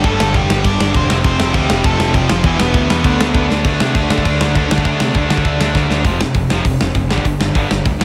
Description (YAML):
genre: punk rock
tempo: 200 BPM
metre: 4/4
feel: straight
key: unclear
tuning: A4 = 439 Hz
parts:
  - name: nasal lead guitar with a parked wah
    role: melody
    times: 0.0-3.5 s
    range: E3 to D5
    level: -22 LUFS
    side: equal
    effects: overdrive, digital delay
  - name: distorted electric guitar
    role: riff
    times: 0.0-8.0 s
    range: E2 to D4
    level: -23 LUFS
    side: equal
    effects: overdrive
  - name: distorted electric guitar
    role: riff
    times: 0.0-8.0 s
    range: E2 to D4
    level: -25 LUFS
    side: equal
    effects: distortion
  - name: fuzz guitar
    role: riff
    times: 0.0-6.0 s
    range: E2 to D4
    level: -25 LUFS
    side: equal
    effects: none
  - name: growling picked electric bass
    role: bass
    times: 0.0-8.0 s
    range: E1 to D3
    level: -22 LUFS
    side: equal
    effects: overdrive
  - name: big rock drum kit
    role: drums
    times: 0.0-8.0 s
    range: crash cymbal, hi-hat, kick drum, snare drum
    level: -19 LUFS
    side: equal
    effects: none
room: light reverb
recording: none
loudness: -15 LUFS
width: mono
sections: 0.0-3.6 A section; 3.6-6.0 B section; 6.0-8.0 C section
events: drum fill 3.5, 5.7-6.0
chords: 0.0 G5; 1.1 F; 2.4 E5; 3.0 D5; 6.0 F5; 7.1 G5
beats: | 0.04 0.34 0.64 0.94 | 1.24 1.54 1.84 2.14 | 2.44 2.75 3.04 3.35 | 3.65 3.95 4.25 4.55 | 4.85 5.15 5.45 5.75 | 6.05 6.35 6.65 6.95 | 7.25 7.55 7.86